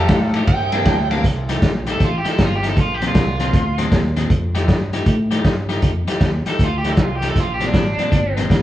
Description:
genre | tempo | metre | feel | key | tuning
electric blues shuffle | 157 BPM | 4/4 | swing 65% on 8ths | F mixolydian | A4 = 441 Hz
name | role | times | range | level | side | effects
overdriven slide guitar | second line | 0.0-1.2 s | F5 to G5 | -24 LUFS | right 5 dB | none
electric guitar at the edge of break-up | riff | 0.0-8.6 s | Bb2 to G4 | -24 LUFS | left 3 dB | none
clear horn section | stabs | 0.0-1.2 s | D4 to Bb4 | -28 LUFS | left 2 dB | none
fingered electric bass | bass | 0.0-8.6 s | G1 to A2 | -22 LUFS | equal | none
vintage drum kit | drums | 0.1-8.6 s | hi-hat, kick drum, ride cymbal, snare drum | -18 LUFS | equal | vintage 12-bit sampler grit
overdriven electric guitar | melody | 1.9-3.8, 6.5-8.4 s | D4 to A4 | -23 LUFS | right 2 dB | none
room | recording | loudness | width
moderate large studio reverb, RT60 1.3 s | band playing live in one room, cassette tape | -15 LUFS | side -13 dB against mid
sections
0.0-1.2 A section; 1.2-8.6 B section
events
electric slide guitar solo 0.0-1.2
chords
0.5 C9; 1.2 F9; 2.8 Bb9; 4.3 F9; 7.4 Bb9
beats
0.09 0.48 0.86 | 1.24 1.63 2.01 2.39 | 2.77 3.16 3.54 3.92 | 4.30 4.69 5.07 5.45 | 5.83 6.21 6.60 6.98 | 7.36 7.74 8.12 8.51

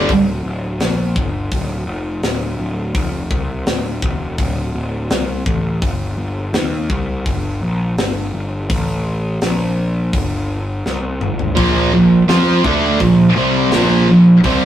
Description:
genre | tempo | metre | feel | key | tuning
heavy metal | 84 BPM | 4/4 | straight | unclear | A4 = 440 Hz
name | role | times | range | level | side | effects
heavy high-gain guitar | riff | 0.0-0.1, 11.6-14.7 s | Bb2 to F4 | -12 LUFS | right 3 dB | distortion
high-gain distorted guitar | riff | 0.0-0.1, 11.6-14.7 s | Bb2 to F4 | -16 LUFS | left 4 dB | distortion
fuzz picked electric bass | bass | 0.0-14.7 s | D1 to F2 | -20 LUFS | left 1 dB | overdrive
tight metal drum kit | drums | 0.1-14.6 s | hi-hat, kick drum, snare drum, toms | -20 LUFS | left 1 dB | none
room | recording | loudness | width
moderate small room reverb, RT60 0.5 s | rough rehearsal-room recording | -14 LUFS | side -11 dB against mid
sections
0.1-14.7 A section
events
drum fill 10.8-11.6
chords
0.1 N.C.; 10.1 Gsus4; 11.6 Bb5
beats
| 0.10 0.81 1.52 2.24 | 2.95 3.67 4.38 5.10 | 5.82 6.54 7.25 7.97 | 8.69 9.41 10.13 10.85 | 11.57 12.29 13.01 13.72 | 14.44

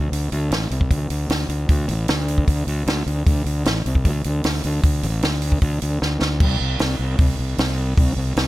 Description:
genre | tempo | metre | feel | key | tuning
indie rock | 153 BPM | 4/4 | straight | unclear | A4 = 440 Hz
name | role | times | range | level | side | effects
fuzz fingered electric bass | bass | 0.0-8.5 s | A1 to D2 | -21 LUFS | equal | overdrive
compact cocktail drum kit | drums | 0.1-8.5 s | crash cymbal, hi-hat, kick drum, snare drum | -21 LUFS | equal | none
room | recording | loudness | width
little or no reverb | none | -18 LUFS | side -17 dB against mid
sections
0.0-6.4 A section; 6.4-8.5 B section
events
drum fill 6.0-6.4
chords
none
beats
| 0.12 0.52 0.91 1.30 | 1.70 2.09 2.48 2.87 | 3.27 3.66 4.05 4.45 | 4.84 5.23 5.62 6.01 | 6.41 6.80 7.19 7.58 | 7.97 8.36

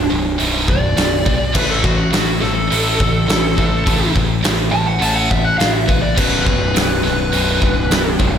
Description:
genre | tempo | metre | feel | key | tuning
hard rock | 104 BPM | 4/4 | straight | unclear | A4 = 441 Hz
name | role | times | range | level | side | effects
dark smooth lead guitar | melody | 0.0-8.2 s | F#4 to A5 | -20 LUFS | left 1 dB | overdrive, slapback echo
heavy high-gain guitar | riff | 0.0-8.4 s | B1 to A3 | -20 LUFS | right 1 dB | distortion
fuzz picked electric bass | bass | 0.0-8.4 s | B0 to B1 | -20 LUFS | equal | overdrive
big rock drum kit | drums | 0.4-8.3 s | crash cymbal, hi-hat, kick drum, snare drum | -18 LUFS | equal | none
distorted electric guitar | riff | 6.2-8.4 s | B1 to B2 | -24 LUFS | right 1 dB | distortion
room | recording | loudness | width
moderate lush hall reverb, RT60 2.6 s | big arena sound | -13 LUFS | side -8 dB against mid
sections
0.0-8.4 A section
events
lead electric guitar solo 0.0-8.4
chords
0.0 Bm; 1.5 A5; 6.2 B5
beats
0.39 0.97 | 1.54 2.12 2.70 3.28 | 3.86 4.43 5.01 5.59 | 6.17 6.75 7.32 7.90

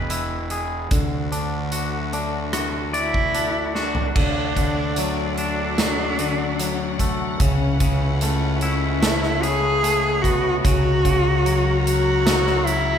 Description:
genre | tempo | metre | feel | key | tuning
post-rock | 74 BPM | 4/4 | straight | unclear | A4 = 440 Hz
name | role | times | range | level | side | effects
clear studio string section | sustained chords | 0.0-13.0 s | B2 to A#5 | -32 LUFS | left 1 dB | none
twangy electric guitar | arpeggios | 0.0-13.0 s | C#3 to D5 | -26 LUFS | left 3 dB | none
fuzz fingered electric bass | bass | 0.0-13.0 s | E1 to D2 | -25 LUFS | left 1 dB | overdrive
big rock drum kit | drums | 0.1-12.9 s | crash cymbal, hi-hat, kick drum, rim click, snare drum, toms | -24 LUFS | right 1 dB | none
rich cello | melody | 2.9-13.0 s | C#4 to G#4 | -22 LUFS | equal | none
room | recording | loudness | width
wet recital hall reverb, RT60 1.5 s | recorded in a church or concert hall | -18 LUFS | side -8 dB against mid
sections
0.0-4.2 A section; 4.2-13.0 B section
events
drum fill 3.8-4.2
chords
0.0 E; 0.9 D; 7.4 Aadd9/C#; 10.6 F#/C#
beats
0.10 | 0.91 1.72 2.53 3.34 | 4.16 4.97 5.78 6.59 | 7.40 8.21 9.02 9.83 | 10.64 11.45 12.26

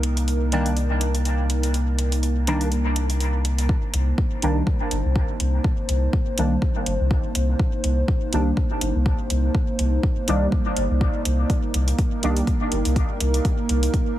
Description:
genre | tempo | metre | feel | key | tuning
dub techno | 123 BPM | 4/4 | swing 56% on 16ths | C minor | A4 = 444 Hz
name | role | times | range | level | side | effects
dark analog pad | sustained chords | 0.0-14.2 s | Bb3 to C5 | -28 LUFS | right 2 dB | chorus, sidechain pumping
soft dub sub bass | bass | 0.0-13.9 s | G1 to C2 | -22 LUFS | equal | sidechain pumping
electronic hi-hat | drums | 0.0-14.0 s | none | -28 LUFS | equal | small room ambience
resonant sweep polysynth | stabs | 0.5-12.4 s | Eb3 to D4 | -28 LUFS | equal | chorus, phaser, cassette tape, sidechain pumping, dub echo
electronic kick drum | drums | 3.7-14.0 s | none | -22 LUFS | equal | small room ambience
room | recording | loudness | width
little or no reverb | heavily compressed radio sound, multiband compression | -20 LUFS | side -14 dB against mid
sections
0.0-3.7 A section; 3.7-14.2 B section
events
filter sweep on analog polysynth 3.7-14.2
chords
0.0 Cm7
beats
0.28 0.77 1.25 | 1.74 2.23 2.72 3.21 | 3.69 4.18 4.67 5.16 | 5.64 6.13 6.62 7.11 | 7.59 8.08 8.57 9.06 | 9.55 10.03 10.52 11.01 | 11.50 11.98 12.47 12.96 | 13.45 13.94

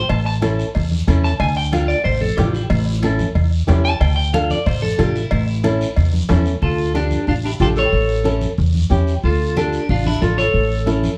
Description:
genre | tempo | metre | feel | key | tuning
latin, cumbia | 184 BPM | 4/4 | straight | D harmonic minor | A4 = 440 Hz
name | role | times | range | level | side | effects
clean electric guitar | melody | 0.0-11.0 s | D4 to A5 | -25 LUFS | equal | spring reverb
upright bass | bass | 0.0-11.1 s | A1 to E2 | -20 LUFS | equal | none
cowbell and timbales | percussion | 0.1-6.5 s | none | -31 LUFS | equal | none
guiro | percussion | 0.1-11.2 s | none | -38 LUFS | equal | none
congas | percussion | 0.3-11.2 s | none | -26 LUFS | equal | none
flamenco guitar | accompaniment | 0.4-11.1 s | C#4 to A4 | -24 LUFS | equal | none
clear clarinet | second line | 6.6-11.0 s | D4 to A4 | -26 LUFS | equal | tape echo
room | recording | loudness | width
light reverb | dark, warm production | -18 LUFS | mono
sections
0.0-6.6 A section; 6.6-11.2 B section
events
clean electric guitar solo 0.0-6.6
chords
0.1 A; 1.4 Dm; 2.7 A7; 4.0 Dm; 5.3 A; 6.6 Dm; 7.9 A7; 9.2 Dm; 10.5 A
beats
| 0.10 0.42 0.75 1.07 | 1.40 1.73 2.05 2.38 | 2.71 3.03 3.36 3.68 | 4.01 4.33 4.66 4.99 | 5.31 5.64 5.97 6.29 | 6.62 6.95 7.27 7.60 | 7.93 8.25 8.58 8.91 | 9.23 9.56 9.89 10.22 | 10.54 10.87

